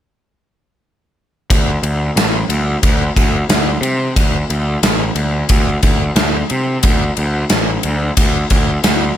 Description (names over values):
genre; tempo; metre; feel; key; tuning
hard rock; 90 BPM; 4/4; straight; unclear; A4 = 440 Hz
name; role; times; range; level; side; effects
fuzz picked electric bass; bass; 1.5-9.1 s; A1 to C3; -17 LUFS; equal; overdrive
gated 80s drum kit; drums; 1.5-9.0 s; kick drum, ride cymbal, snare drum; -15 LUFS; equal; none
room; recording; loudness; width
light reverb; none; -13 LUFS; side -11 dB against mid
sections
1.5-9.2 A section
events
none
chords
none